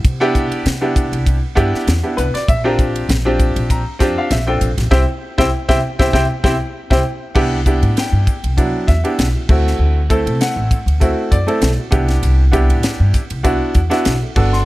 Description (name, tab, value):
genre	electric jazz fusion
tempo	98 BPM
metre	4/4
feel	swing 54% on 16ths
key	C lydian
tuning	A4 = 439 Hz
part	upright bass	bass	0.0-14.6 s	G1 to C3	-17 LUFS	equal	none
part	tight funk drum kit	drums	0.0-14.6 s	crash cymbal, hi-hat, kick drum, ride cymbal, snare drum	-18 LUFS	equal	none
part	clear baby grand piano	accompaniment	0.2-14.7 s	F#3 to C6	-18 LUFS	equal	none
room	small room ambience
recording	none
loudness	-13 LUFS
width	side -18 dB against mid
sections	0.0-7.4 A section; 7.4-14.7 A section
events	band accent 4.9-7.4; drum fill 6.1-7.4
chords	0.0 Cmaj9; 2.5 Bb69; 4.9 C; 7.4 Cmaj7; 9.5 D9; 11.9 Cmaj7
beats	| 0.04 0.65 1.26 1.87 | 2.48 3.09 3.70 4.31 | 4.92 5.53 6.14 6.75 | 7.36 7.96 8.57 9.18 | 9.79 10.40 11.01 11.62 | 12.23 12.84 13.45 14.06